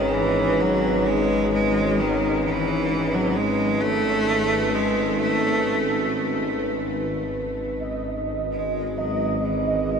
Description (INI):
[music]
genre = dark ambient drone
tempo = 65 BPM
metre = 4/4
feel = straight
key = G# phrygian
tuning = A4 = 440 Hz
[part]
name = bright cello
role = melody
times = 0.0-10.0 s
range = D#3 to A3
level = -24 LUFS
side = right 1 dB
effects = shimmer reverb, diffuse ambient delay
[part]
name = dark analog pad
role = sustained chords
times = 0.0-10.0 s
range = C#4 to C#5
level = -25 LUFS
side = left 1 dB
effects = chorus, shimmer reverb
[part]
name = bowed-like drone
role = drone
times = 0.0-10.0 s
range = G#1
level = -27 LUFS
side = right 1 dB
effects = built-in reverb
[part]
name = bubbling stepped-filter texture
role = texture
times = 7.1-10.0 s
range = D#5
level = -27 LUFS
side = right 3 dB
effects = chorus, built-in reverb
[sound]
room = wet huge ambient reverb, RT60 7.9 s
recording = none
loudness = -20 LUFS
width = side -6 dB against mid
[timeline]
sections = 0.0-7.1 A section; 7.1-10.0 B section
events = none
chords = 0.0 G#m